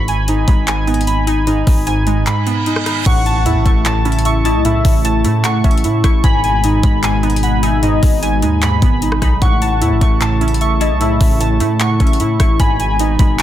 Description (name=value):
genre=hip hop, trap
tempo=151 BPM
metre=4/4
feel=half-time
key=unclear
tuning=A4 = 440 Hz
part: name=glassy wavetable pluck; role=accompaniment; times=0.0-13.4 s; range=G#2 to E4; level=-20 LUFS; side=right 1 dB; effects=chorus
part: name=warbly lo-fi synth keys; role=arpeggios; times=0.0-13.4 s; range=D#4 to C#6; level=-18 LUFS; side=right 2 dB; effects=chorus, ping-pong delay
part: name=distorted 808-style bass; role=bass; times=0.0-13.4 s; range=G#1 to A2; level=-18 LUFS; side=equal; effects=distortion
part: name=trap drum kit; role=drums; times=0.1-13.4 s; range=crash cymbal, handclaps, hi-hat, kick drum, rim click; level=-16 LUFS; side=equal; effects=none
part: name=reverse cymbal and impact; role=sound effects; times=2.4-4.6 s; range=none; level=-26 LUFS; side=right 2 dB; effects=none
part: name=warm velvety synth lead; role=second line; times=3.1-13.0 s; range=D#5 to G#5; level=-23 LUFS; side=left 6 dB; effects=chorus, ping-pong delay
part: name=warm analog pad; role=sustained chords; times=3.1-13.4 s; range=B2 to E4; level=-23 LUFS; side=left 1 dB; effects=chorus
room=digital ambience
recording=dense, heavily limited modern master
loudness=-12 LUFS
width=side -12 dB against mid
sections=0.0-3.1 A section; 3.1-13.4 B section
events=break 2.3-3.1; reverse cymbal 2.4-3.1; impact 3.1-4.6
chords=0.0 G#m; 3.1 A; 6.2 G#m; 9.4 A; 12.6 G#m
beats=0.28 0.68 1.07 | 1.47 1.87 2.27 2.66 | 3.06 3.46 3.85 4.25 | 4.65 5.05 5.44 5.84 | 6.24 6.64 7.03 7.43 | 7.83 8.23 8.62 9.02 | 9.42 9.81 10.21 10.61 | 11.01 11.40 11.80 12.20 | 12.60 12.99 13.39